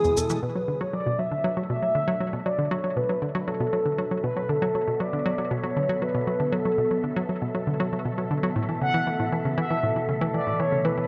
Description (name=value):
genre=ambient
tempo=118 BPM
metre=4/4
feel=straight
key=B minor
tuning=A4 = 440 Hz
part: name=mellow horn-like synth lead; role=melody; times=0.0-11.1 s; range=G#4 to F#5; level=-29 LUFS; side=equal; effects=analog chorus, analog delay
part: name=lush unison pad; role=sustained chords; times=0.0-11.1 s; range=B2 to A4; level=-35 LUFS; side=equal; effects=chorus, phaser
part: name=hollow square pluck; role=riff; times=0.0-11.1 s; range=E2 to F#3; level=-30 LUFS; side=equal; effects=chorus, vintage 12-bit sampler grit, analog delay
part: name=wind-like tuned noise texture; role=texture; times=0.0-11.1 s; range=E5 to D#6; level=-43 LUFS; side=equal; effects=built-in reverb
room=moderate plate reverb, RT60 3.3 s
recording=none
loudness=-26 LUFS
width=mono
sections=0.4-11.1 A section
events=fade-in on analog synth pad 0.4-11.1; fade-in on synth texture 0.4-11.1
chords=0.4 Bm7; 8.6 Aadd9